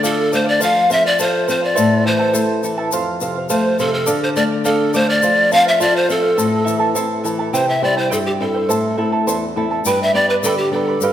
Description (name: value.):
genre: andean folk, Andean ensemble.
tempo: 104 BPM.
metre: 2/4.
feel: straight.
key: A minor.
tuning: A4 = 440 Hz.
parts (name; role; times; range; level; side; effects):
breathy polished pan flute; melody; 0.0-11.1 s; G4 to F5; -16 LUFS; equal; none.
charango; accompaniment; 0.0-11.1 s; E4 to B5; -21 LUFS; right 4 dB; none.
nylon-string guitar; accompaniment; 0.0-11.1 s; E2 to A4; -21 LUFS; left 3 dB; none.
egg shaker; percussion; 0.0-11.1 s; none; -28 LUFS; left 6 dB; none.
room: wet recital hall reverb, RT60 1.6 s.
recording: none.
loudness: -14 LUFS.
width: side -11 dB against mid.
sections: 0.0-7.5 A section; 7.5-11.1 B section.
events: none.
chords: 0.0 Dm; 0.6 F; 1.8 Am; 2.9 F; 4.1 Dm; 5.2 F; 6.4 Am; 7.5 C; 8.7 Am; 9.8 G.